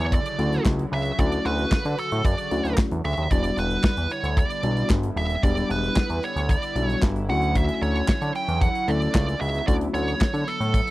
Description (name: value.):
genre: early-eighties boogie funk.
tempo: 113 BPM.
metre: 4/4.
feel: straight.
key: unclear.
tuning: A4 = 440 Hz.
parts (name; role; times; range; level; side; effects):
nasal lead guitar with a parked wah; melody; 0.0-10.9 s; A4 to G5; -27 LUFS; right 2 dB; overdrive, slapback echo.
chorused pulse-width pad; sustained chords; 0.0-10.9 s; C#3 to F#4; -33 LUFS; equal; none.
fat analog bass; bass; 0.0-10.8 s; D#1 to D3; -26 LUFS; equal; none.
modern studio drum kit; drums; 0.1-10.9 s; handclaps, hi-hat, kick drum, snare drum; -22 LUFS; equal; none.
mellow tine electric piano; accompaniment; 0.4-10.3 s; F#3 to A4; -28 LUFS; left 3 dB; none.
room: little or no reverb.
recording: dry, close 1970s-style studio recording.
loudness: -21 LUFS.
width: side -18 dB against mid.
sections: 0.0-10.9 A section.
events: none.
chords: 0.0 Dmaj9; 3.3 Em7; 7.3 Dmaj9.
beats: 0.12 0.65 | 1.18 1.72 2.25 2.78 | 3.31 3.84 4.37 4.90 | 5.43 5.96 6.49 7.03 | 7.56 8.09 8.62 9.15 | 9.68 10.21 10.74.